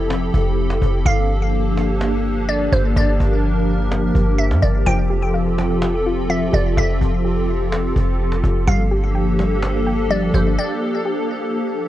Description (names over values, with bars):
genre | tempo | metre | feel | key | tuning
hip hop, atmospheric cloud-rap | 126 BPM | 4/4 | half-time | G dorian | A4 = 440 Hz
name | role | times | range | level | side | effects
hollow soft pad | sustained chords | 0.0-11.9 s | F3 to Bb4 | -20 LUFS | equal | ensemble chorus
clean 808-style bass | bass | 0.0-10.6 s | F1 to G2 | -19 LUFS | equal | none
cajon | drums | 0.1-10.5 s | none | -27 LUFS | equal | none
glassy wavetable pluck | melody | 1.1-11.0 s | C5 to G5 | -26 LUFS | equal | chorus, ping-pong delay
soft round pluck | arpeggios | 4.9-11.9 s | F3 to G5 | -27 LUFS | left 2 dB | chorus, ping-pong delay
room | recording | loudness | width
little or no reverb | worn, warbling old tape, cassette tape, warbly pitch drift, nothing above 10.5 kHz | -16 LUFS | side -13 dB against mid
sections
0.0-11.9 A section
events
break 10.6-11.9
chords
0.0 Fmaj9; 1.1 Gm9; 4.9 Fmaj9; 8.7 Gm9